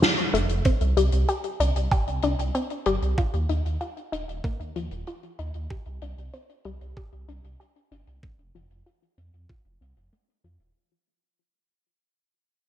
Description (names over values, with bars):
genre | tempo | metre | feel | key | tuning
synthwave | 95 BPM | 4/4 | straight | unclear | A4 = 438 Hz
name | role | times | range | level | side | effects
analog pluck | arpeggios | 0.0-10.7 s | F3 to G4 | -28 LUFS | left 2 dB | chorus, digital delay
soft-mallet drum kit | drums | 0.0-10.7 s | hi-hat, snare drum | -26 LUFS | equal | low-pass filter on hats, low-pass filter on snare, low-pass filter on room, gated reverb
dark detuned saw bass | bass | 0.3-10.7 s | Eb1 to F2 | -27 LUFS | equal | none
electronic kick drum | drums | 0.7-9.6 s | none | -25 LUFS | equal | none
room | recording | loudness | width
light reverb, studio reverb | bright 1980s-style digital production | -23 LUFS | side -11 dB against mid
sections
0.0-10.8 A section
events
fade-out 0.0-10.8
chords
0.0 F; 0.7 Csus2; 3.2 Ebsus2; 5.7 Csus2; 8.2 F